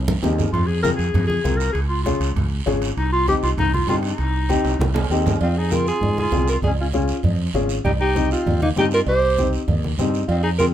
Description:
latin, cumbia; 197 BPM; 4/4; straight; A4 = 439 Hz
mellow fretless electric bass; bass; 0.0-10.7 s; Ab1 to Ab2; -22 LUFS; equal
congas; percussion; 0.1-10.7 s; -25 LUFS; equal
dark upright piano; accompaniment; 0.2-10.7 s; C4 to Bb4; -24 LUFS; left 3 dB
guiro; percussion; 0.2-10.7 s; -36 LUFS; right 6 dB
timbales and cowbell; percussion; 0.2-10.4 s; -32 LUFS; right 4 dB
clear clarinet; second line; 0.5-10.7 s; Bb3 to Bb4; -24 LUFS; left 2 dB
warm alto saxophone; melody; 5.4-10.7 s; Eb4 to C5; -22 LUFS; right 2 dB
light reverb; minimal, uncompressed stereo recording; -18 LUFS; side -11 dB against mid
0.0-5.4 A section; 5.4-10.7 B section
drum fill 0.0-0.5, 4.7-5.4; clarinet solo 0.0-5.4
0.0 Cm; 0.5 Fm; 1.8 Db; 3.0 Cm; 5.4 Fm; 6.6 Db; 7.9 Cm

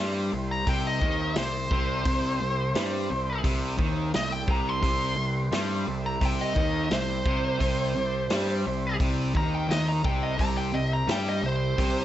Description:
blues rock power trio and southern rock; 86 BPM; 4/4; straight; C major; A4 = 440 Hz
bluesy overdriven lead guitar; melody; 0.0-12.0 s; C5 to C6; -30 LUFS; equal; distortion
overdriven tonewheel organ; sustained chords; 0.0-12.0 s; B3 to E5; -39 LUFS; right 3 dB; slow rotary speaker, plate reverb
fuzz guitar; riff; 0.0-12.0 s; C3 to G3; -30 LUFS; left 1 dB; distortion
fuzz picked electric bass; bass; 0.0-12.0 s; C2 to G2; -31 LUFS; equal; overdrive
vintage drum kit; drums; 0.7-11.9 s; hi-hat, kick drum, snare drum; -30 LUFS; equal
moderate studio reverb, RT60 0.7 s; nothing above 8.0 kHz; -24 LUFS; side -12 dB against mid
0.0-12.0 A section
lead electric guitar solo 0.0-12.0
0.0 C

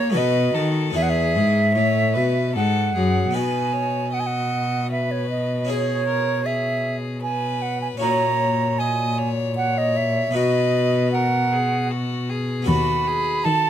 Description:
classical, baroque-style sonata movement with continuo; 77 BPM; 3/4; straight; E major, B major from 3.4 s; A4 = 441 Hz
rich violin; melody; 0.0-13.7 s; F#4 to D#5; -28 LUFS; left 6 dB
silver concert flute; second line; 0.0-13.7 s; C#5 to B5; -22 LUFS; right 4 dB
harpsichord; accompaniment; 0.0-13.7 s; D#2 to B4; -27 LUFS; left 4 dB
warm cello; bass; 0.0-13.7 s; D#2 to A#3; -23 LUFS; left 1 dB
light reverb; close, detailed microphones; -19 LUFS; side -10 dB against mid
0.0-3.4 A section; 3.4-13.7 A section
0.2 B7; 1.0 E; 3.4 B; 5.7 C#m7/B; 8.0 F#7/A#; 10.4 B; 12.7 B7/D#

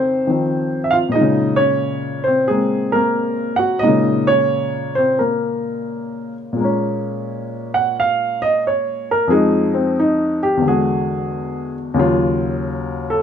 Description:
solo jazz; 89 BPM; 4/4; swing 67% on 8ths, rubato; Bb minor; A4 = 441 Hz
warm baby grand piano; solo; 0.0-13.2 s; Eb2 to Gb5; -16 LUFS; equal
light reverb; -16 LUFS; side -8 dB against mid
0.0-6.6 A section; 6.6-13.2 B section
grand piano solo 6.6-13.2
0.0 F7(no3); 1.1 Bbm9; 6.6 Bbm7; 9.3 Fm7; 10.6 E9; 12.0 Ebm9

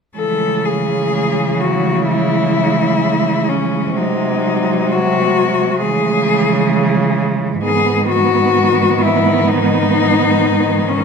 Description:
classical, lyrical piece for cello ensemble; 65 BPM; 4/4; rubato; C# minor; A4 = 440 Hz
clear cello; melody; 0.2-11.0 s; C#4 to A4; -16 LUFS; left 5 dB
warm cello; second line; 0.2-11.0 s; G#3 to B3; -19 LUFS; right 9 dB
clear cello; accompaniment; 0.2-11.0 s; D#3 to F#3; -21 LUFS; left 2 dB
warm cello; bass; 0.2-11.0 s; G#2 to C#3; -20 LUFS; right 3 dB
moderate recital hall reverb, RT60 1.4 s; minimal, uncompressed stereo recording; -13 LUFS; side -5 dB against mid
0.2-11.0 A section
0.2 C#m; 4.0 G#7/B#; 5.8 C#m; 7.6 G#m

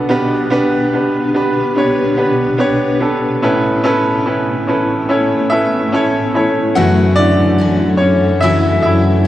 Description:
pop ballad; 72 BPM; 4/4; straight; A4 = 440 Hz
bright baby grand piano; accompaniment; 0.0-9.3 s; A1 to F#5; -14 LUFS; equal
granular cloud pad; sustained chords; 0.0-9.3 s; A2 to F#5; -20 LUFS; left 2 dB; built-in reverb
picked steel-string acoustic guitar; arpeggios; 6.8-9.3 s; F#2 to F#4; -18 LUFS; left 5 dB
dark studio cello section; bass; 6.8-9.3 s; F#2; -14 LUFS; equal
wet lush hall reverb, RT60 2.5 s; worn, warbling old tape, cassette tape, warbly pitch drift; -12 LUFS; side -13 dB against mid
0.0-6.8 A section; 6.8-9.3 B section
grand piano solo 6.8-9.3
0.1 G/B; 3.4 Aadd9; 6.8 F#m7

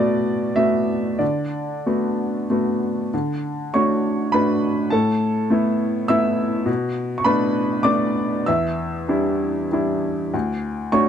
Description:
neoclassical minimalist piano; 91-105 BPM; 3/4; rubato; D major; A4 = 440 Hz
clear upright piano; solo; 0.0-11.1 s; D2 to E6; -19 LUFS; equal
little or no reverb; close, detailed microphones; -19 LUFS; side -8 dB against mid
0.0-3.1 A section; 3.1-11.1 A section
0.0 Bm7; 1.2 D6; 3.1 Dmaj7; 4.9 Asus2; 6.7 Bm7; 8.5 Em7; 10.3 Dmaj7

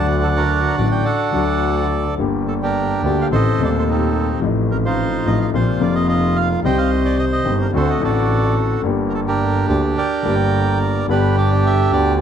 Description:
tango; 108 BPM; 4/4; rubato; G minor; A4 = 439 Hz
bandoneon; melody; 0.0-12.2 s; C4 to G5; -20 LUFS; right 4 dB
warm concert grand piano; accompaniment; 0.0-12.2 s; Eb1 to G4; -19 LUFS; left 4 dB
clear double bass; bass; 0.0-12.2 s; F1 to Eb2; -21 LUFS; right 2 dB
light reverb; dark, warm production; -15 LUFS; side -8 dB against mid
0.0-11.1 A section; 11.1-12.2 B section
0.0 D; 2.2 Gm; 3.3 Adim; 4.4 F7/A; 5.5 Bbsus2; 6.6 Cm; 7.7 D7; 8.8 Gm; 11.1 G

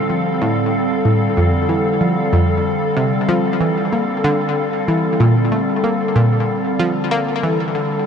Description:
ambient, sequencer-driven space music; 94 BPM; 4/4; straight; Bb major; A4 = 440 Hz
evolving wavetable pad; sustained chords; 0.0-8.1 s; D3 to F5; -18 LUFS; equal; chorus, built-in reverb
wind-like tuned noise texture; texture; 0.0-8.1 s; A4; -27 LUFS; left 5 dB; built-in reverb
analog pluck; riff; 0.1-8.1 s; F2 to Bb3; -18 LUFS; equal; chorus, ping-pong delay
moderate huge ambient reverb, RT60 8.6 s; cassette tape, nothing above 11.0 kHz; -15 LUFS; side -7 dB against mid
0.0-8.1 A section
0.0 Fadd9; 3.6 Bb

